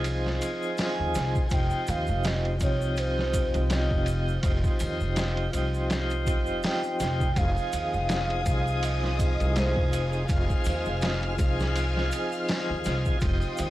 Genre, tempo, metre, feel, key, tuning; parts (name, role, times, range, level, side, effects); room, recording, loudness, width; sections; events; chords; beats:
trip hop; 82 BPM; 4/4; swing 56% on 16ths; F minor; A4 = 440 Hz
tonewheel organ; accompaniment; 0.0-13.7 s; C3 to Ab4; -30 LUFS; equal; slow rotary speaker, tremolo, tape echo
upright bass; bass; 0.0-13.7 s; F1 to Eb2; -28 LUFS; equal; transformer saturation
trip hop sampler-style drum kit; drums; 0.0-13.7 s; hi-hat, kick drum, ride cymbal, snare drum; -29 LUFS; equal
tube shaker and triangle; percussion; 0.0-13.7 s; -46 LUFS; right 1 dB
pure breathy sine lead; melody; 0.8-13.7 s; C5 to Ab5; -34 LUFS; right 1 dB; lush chorus, tape echo
rich studio string section; sustained chords; 7.4-13.7 s; Ab4 to F6; -36 LUFS; left 3 dB
little or no reverb; dry, gritty hardware recording, cassette tape; -24 LUFS; side -15 dB against mid
0.0-13.7 A section
0.0 Fm7; 1.5 Cm/F; 7.4 Fm7
0.04 0.78 | 1.51 2.24 2.97 3.70 | 4.43 5.17 5.90 6.63 | 7.36 8.09 8.82 9.56 | 10.29 11.02 11.75 12.48 | 13.21